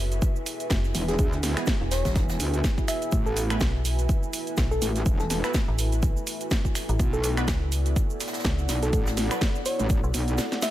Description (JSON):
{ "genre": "bass house", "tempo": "124 BPM", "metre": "4/4", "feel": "swing 57% on 16ths", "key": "unclear", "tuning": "A4 = 436 Hz", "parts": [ { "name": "deep dark ambient pad", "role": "sustained chords", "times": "0.0-10.7 s", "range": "A3 to D5", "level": "-37 LUFS", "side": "right 1 dB", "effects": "chorus, built-in reverb, vintage 12-bit sampler grit, sidechain pumping" }, { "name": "metallic FM bass", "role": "bass", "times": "0.0-10.1 s", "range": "E1 to C#2", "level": "-26 LUFS", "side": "equal", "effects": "tube saturation, sidechain pumping" }, { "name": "airy breathy pad", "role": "texture", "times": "0.0-10.7 s", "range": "E4 to G#5", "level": "-36 LUFS", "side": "left 1 dB", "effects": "chorus, sidechain pumping" }, { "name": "house drum kit", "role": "drums", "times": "0.1-10.7 s", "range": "finger snaps, hi-hat, shaker, snare drum", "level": "-31 LUFS", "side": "right 1 dB", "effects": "none" }, { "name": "electronic kick drum", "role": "drums", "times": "0.2-10.0 s", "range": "none", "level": "-25 LUFS", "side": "equal", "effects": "none" }, { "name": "shaker and snare drum", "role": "drums", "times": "0.2-10.7 s", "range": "none", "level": "-40 LUFS", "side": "right 2 dB", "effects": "none" }, { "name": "metallic wobble bass", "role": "bass", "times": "0.9-10.4 s", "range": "E1 to D2", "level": "-26 LUFS", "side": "equal", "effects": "distortion, chorus, overdrive, sidechain pumping" }, { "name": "soft struck synth lead", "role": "melody", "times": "1.1-10.7 s", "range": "G#4 to E5", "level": "-33 LUFS", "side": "left 1 dB", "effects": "chorus, digital delay" }, { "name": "orchestra-hit-like synth stab", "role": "stabs", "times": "1.6-9.4 s", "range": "E3 to B4", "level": "-36 LUFS", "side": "right 3 dB", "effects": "built-in reverb, sidechain pumping, digital delay" } ], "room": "little or no reverb", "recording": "none", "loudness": "-23 LUFS", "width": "side -14 dB against mid", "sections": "0.0-10.7 A section", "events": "drum fill 10.4-10.7", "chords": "0.0 E; 3.1 Asus2; 7.0 Bm", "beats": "0.22 0.70 | 1.19 1.67 2.16 2.64 | 3.12 3.61 4.09 4.58 | 5.06 5.54 6.03 6.51 | 7.00 7.48 7.96 8.45 | 8.93 9.41 9.90 10.38" }